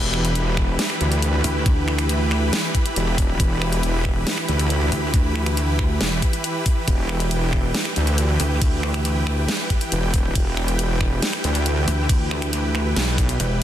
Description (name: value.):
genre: heavy wobble dubstep.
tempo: 138 BPM.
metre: 4/4.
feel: half-time.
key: E minor.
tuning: A4 = 440 Hz.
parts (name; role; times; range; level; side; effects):
supersaw chords; sustained chords; 0.0-13.6 s; E3 to B5; -25 LUFS; right 1 dB; sidechain pumping.
wobble bass; bass; 0.0-13.4 s; E1 to D2; -21 LUFS; equal; chorus, overdrive.
dubstep drum kit; drums; 0.1-13.5 s; finger snaps, hi-hat, ride cymbal, snare drum; -26 LUFS; equal; none.
electronic kick drum; drums; 0.6-13.3 s; none; -20 LUFS; equal; none.
pulsing pluck wobble bass; bass; 1.4-13.6 s; E1 to D2; -21 LUFS; equal; chorus, overdrive.
room: digital ambience.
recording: dense, heavily limited modern master.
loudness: -18 LUFS.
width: side -11 dB against mid.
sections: 0.0-13.6 A section.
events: kick drops out 13.4.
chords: 0.0 Em.